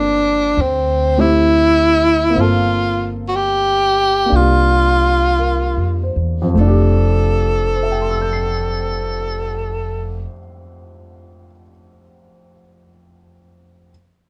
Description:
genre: jazz ballad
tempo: 49-71 BPM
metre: 4/4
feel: swing 69% on 8ths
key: F major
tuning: A4 = 440 Hz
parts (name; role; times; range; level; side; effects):
- breathy tenor saxophone; melody; 0.0-10.3 s; C4 to A4; -18 LUFS; equal; none
- warm baby grand piano; accompaniment; 0.0-13.9 s; F2 to C7; -24 LUFS; equal; none
- upright bass; bass; 0.0-10.2 s; F1 to F2; -21 LUFS; equal; none
room: light reverb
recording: dark, warm production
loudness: -16 LUFS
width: mono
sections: 0.0-6.5 A section; 6.5-11.4 B section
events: slowing down 0.0-6.5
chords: 0.0 Gm11; 0.6 D9sus4; 2.3 Gm11; 4.3 C9sus4; 6.5 F69

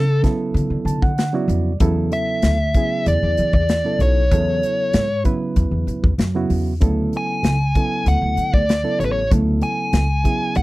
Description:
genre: electric jazz fusion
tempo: 96 BPM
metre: 4/4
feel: straight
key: D lydian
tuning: A4 = 440 Hz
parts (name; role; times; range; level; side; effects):
- dark smooth lead guitar; melody; 0.0-10.6 s; A4 to G#5; -21 LUFS; left 1 dB; overdrive
- barky reed electric piano; accompaniment; 0.0-10.6 s; C#3 to A5; -24 LUFS; right 3 dB; none
- upright bass; bass; 0.0-10.6 s; A1 to E3; -20 LUFS; equal; none
- modern studio drum kit; drums; 0.2-10.6 s; hi-hat, kick drum, snare drum; -19 LUFS; equal; none
room: little or no reverb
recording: dry, close 1970s-style studio recording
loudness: -16 LUFS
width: side -19 dB against mid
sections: 0.0-10.6 A section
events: reed electric piano fill 0.6-1.8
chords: 0.0 Dmaj9; 1.8 E9sus4; 4.3 Aadd9/E; 6.8 Dmaj9

